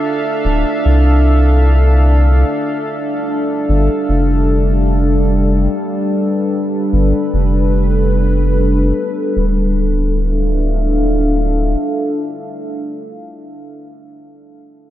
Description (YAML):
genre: ambient dub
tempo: free time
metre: none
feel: none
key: D dorian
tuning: A4 = 440 Hz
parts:
  - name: deep dark ambient pad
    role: sustained chords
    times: 0.0-13.4 s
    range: G3 to F5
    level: -17 LUFS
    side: equal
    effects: chorus, built-in reverb
  - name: soft dub sub bass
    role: bass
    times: 0.5-11.8 s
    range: D1 to C2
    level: -13 LUFS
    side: equal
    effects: none
room: light reverb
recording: none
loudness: -12 LUFS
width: side -13 dB against mid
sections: 0.0-9.4 A section; 9.4-12.6 B section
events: none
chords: 0.0 Dm7; 2.9 G7; 9.4 Dm